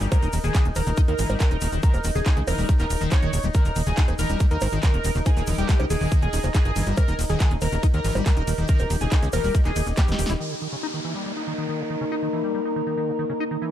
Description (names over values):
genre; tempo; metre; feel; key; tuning
psychedelic trance; 140 BPM; 4/4; straight; Eb major; A4 = 440 Hz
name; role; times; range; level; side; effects
overtone-sweeping drone; sustained chords; 0.0-13.7 s; Eb4 to Eb5; -33 LUFS; left 4 dB; chorus, built-in reverb, sidechain pumping
liquid acid bass; riff; 0.0-13.7 s; Db3 to Fb4; -30 LUFS; equal; chorus, auto-pan, sidechain pumping, dub echo
tight sequencer bass; bass; 0.0-10.4 s; Eb1 to Eb2; -25 LUFS; equal; none
big-room dance drum kit; drums; 0.0-10.4 s; bongos, handclaps, hi-hat, ride cymbal, snare drum; -32 LUFS; right 2 dB; none
tube shaker; percussion; 0.0-10.4 s; none; -38 LUFS; left 4 dB; none
warbly tape-like pad; texture; 0.0-13.7 s; Bb3 to Bb5; -34 LUFS; right 2 dB; chorus, built-in reverb, sidechain pumping
wide unison lead; melody; 0.1-10.3 s; G4 to Db5; -30 LUFS; equal; phaser, sidechain pumping, dub echo
electronic kick drum; drums; 0.1-10.1 s; none; -19 LUFS; equal; none
downlifter; sound effects; 10.4-13.7 s; none; -36 LUFS; equal; none
room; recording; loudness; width
digital ambience; dark, warm production; -20 LUFS; side -11 dB against mid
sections
0.0-10.4 A section; 10.4-13.7 B section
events
drop 0.0-10.4; drum fill 10.0-10.4; filter sweep on acid bass 10.4-13.7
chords
0.0 Eb5